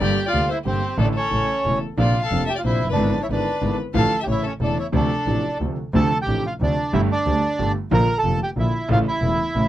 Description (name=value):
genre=tango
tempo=183 BPM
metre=3/4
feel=rubato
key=D minor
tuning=A4 = 439 Hz
part: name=bandoneon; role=melody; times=0.0-9.7 s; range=C4 to Bb5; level=-23 LUFS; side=right 2 dB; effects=none
part: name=warm violin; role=second line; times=0.0-5.6 s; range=G4 to F5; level=-28 LUFS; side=left 7 dB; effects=none
part: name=warm concert grand piano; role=accompaniment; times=0.0-9.7 s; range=E1 to G4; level=-23 LUFS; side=equal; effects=none
part: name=clear double bass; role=bass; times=0.0-9.7 s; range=E1 to D2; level=-24 LUFS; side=equal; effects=none
room=little or no reverb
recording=dark, warm production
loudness=-19 LUFS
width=side -13 dB against mid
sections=0.0-5.9 A section; 5.9-9.7 B section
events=none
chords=0.0 Gm; 1.0 Asus4; 1.3 A; 2.0 Bbadd9; 3.0 E7/G#; 4.0 Dm/A; 4.3 A; 4.9 Dm7; 6.9 Gsus2; 7.9 Bb; 8.9 A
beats=| 0.01 0.34 0.66 | 0.99 1.32 1.65 | 1.98 2.32 2.65 | 2.98 3.31 3.63 | 3.96 4.28 4.61 | 4.94 5.27 5.61 | 5.95 6.28 6.61 | 6.93 7.26 7.59 | 7.91 8.23 8.56 | 8.89 9.22 9.55